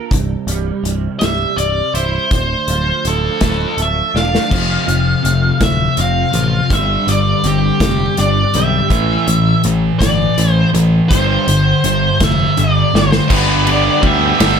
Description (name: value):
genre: quiet-loud alternative rock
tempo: 55 BPM (dotted quarters)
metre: 6/8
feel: straight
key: unclear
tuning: A4 = 443 Hz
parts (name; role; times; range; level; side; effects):
- electric guitar at the edge of break-up; arpeggios; 0.0-8.9 s; C2 to Bb4; -23 LUFS; right 8 dB; ensemble chorus
- picked electric bass; bass; 0.1-14.6 s; C1 to D2; -18 LUFS; equal; none
- loose indie drum kit; drums; 0.1-14.6 s; crash cymbal, hi-hat, kick drum, ride cymbal, snare drum; -18 LUFS; left 1 dB; none
- octave-fuzz lead guitar; melody; 1.2-14.6 s; G4 to F5; -17 LUFS; right 1 dB; distortion
- thick fuzz guitar; riff; 4.5-14.6 s; F2 to G4; -18 LUFS; left 8 dB; distortion
- thick fuzz guitar; riff; 8.9-14.6 s; G2 to G4; -18 LUFS; right 10 dB; distortion
- tight distorted guitar; riff; 13.3-14.6 s; G2 to G3; -21 LUFS; left 2 dB; distortion
room: light reverb, studio ambience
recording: none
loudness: -12 LUFS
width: side -7 dB against mid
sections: 0.0-4.5 A section; 4.5-13.3 B section; 13.3-14.6 C section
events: drum fill 4.1-4.5, 12.9-13.3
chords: 0.1 C; 2.3 Dm7; 4.5 F; 6.7 Gsus4; 8.9 A5; 11.1 Gsus4; 13.3 G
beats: | 0.12 1.22 | 2.31 3.42 | 4.51 5.62 | 6.71 7.81 | 8.91 10.01 | 11.10 12.20 | 13.29 14.39